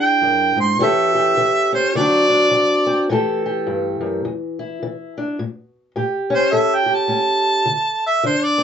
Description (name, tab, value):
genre	acoustic country blues, solo or duo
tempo	105 BPM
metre	4/4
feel	swing 60% on 8ths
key	A mixolydian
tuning	A4 = 440 Hz
part	warm harmonica	melody	0.0-8.6 s	C5 to C6	-16 LUFS	right 2 dB	none
part	fingerpicked steel-string acoustic guitar	accompaniment	0.0-8.6 s	E2 to A4	-19 LUFS	left 1 dB	none
room	wet booth ambience, RT60 0.3 s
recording	heard from further back in the room, nothing above 7.8 kHz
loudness	-15 LUFS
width	side -8 dB against mid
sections	0.0-5.4 A section; 5.4-8.6 B section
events	harmonica solo 5.4-8.6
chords	0.0 E7; 0.8 A7; 1.9 D7; 3.1 A5; 4.2 Dsus2/E; 5.4 A7; 7.7 D5